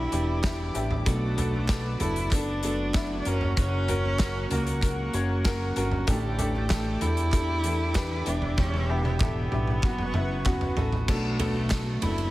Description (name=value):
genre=piano-driven pop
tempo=96 BPM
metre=4/4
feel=straight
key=B minor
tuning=A4 = 440 Hz
part: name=warm cello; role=melody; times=0.0-12.3 s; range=A3 to E4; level=-32 LUFS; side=equal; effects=none
part: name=warm upright piano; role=accompaniment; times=0.0-12.3 s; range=A2 to C#5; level=-32 LUFS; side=left 2 dB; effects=none
part: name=warm analog pad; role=sustained chords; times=0.0-11.1 s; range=G3 to D6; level=-39 LUFS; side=equal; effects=chorus, tremolo
part: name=picked steel-string acoustic guitar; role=riff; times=0.0-12.3 s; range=F#2 to G4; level=-36 LUFS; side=right 5 dB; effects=none
part: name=fat analog bass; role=bass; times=0.0-12.3 s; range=E1 to E2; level=-29 LUFS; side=equal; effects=none
part: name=loose indie drum kit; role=drums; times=0.1-12.3 s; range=crash cymbal, hi-hat, kick drum, ride cymbal, snare drum, toms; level=-29 LUFS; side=equal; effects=none
part: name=group handclap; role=percussion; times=0.4-11.9 s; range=none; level=-43 LUFS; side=right 3 dB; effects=none
room=light reverb, small room ambience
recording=heavily compressed radio sound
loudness=-24 LUFS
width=side -17 dB against mid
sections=0.0-11.1 A section; 11.1-12.3 A section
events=drum fill 8.6-11.1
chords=0.0 Em7; 1.1 Bm7; 3.3 F#; 6.1 A7sus4; 8.3 Em7; 9.8 F#sus4; 11.1 Bm7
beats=0.44 | 1.06 1.69 2.32 2.94 | 3.57 4.20 4.82 5.45 | 6.08 6.70 7.33 7.95 | 8.58 9.21 9.83 10.46 | 11.08 11.71